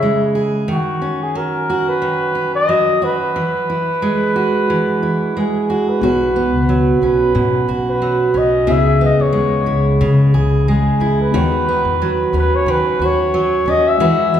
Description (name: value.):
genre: acoustic pop.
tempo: 90 BPM.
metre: 4/4.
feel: swing 55% on 16ths.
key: B major.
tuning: A4 = 441 Hz.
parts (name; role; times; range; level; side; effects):
mellow flugelhorn; melody; 0.0-14.4 s; F#4 to E5; -18 LUFS; left 2 dB; none.
fingerpicked steel-string acoustic guitar; accompaniment; 0.0-14.4 s; B2 to G#4; -17 LUFS; right 2 dB; none.
reed electric piano; accompaniment; 6.0-14.4 s; G#3 to C#5; -25 LUFS; left 7 dB; none.
upright bass; bass; 6.0-13.9 s; B1 to D#3; -18 LUFS; left 1 dB; none.
room: wet recital hall reverb, RT60 1.7 s.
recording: recorded in a church or concert hall.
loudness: -13 LUFS.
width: side -9 dB against mid.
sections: 0.0-6.0 A section; 6.0-14.4 B section.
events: none.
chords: 0.0 C#m; 0.7 Badd9/D#; 3.4 Eadd9; 6.0 Badd9; 8.7 C#m7; 11.3 Badd9/D#.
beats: 0.03 | 0.69 1.36 2.02 2.69 | 3.35 4.02 4.69 5.35 | 6.02 6.68 7.35 8.02 | 8.68 9.35 10.01 10.67 | 11.34 12.00 12.67 13.33 | 13.99.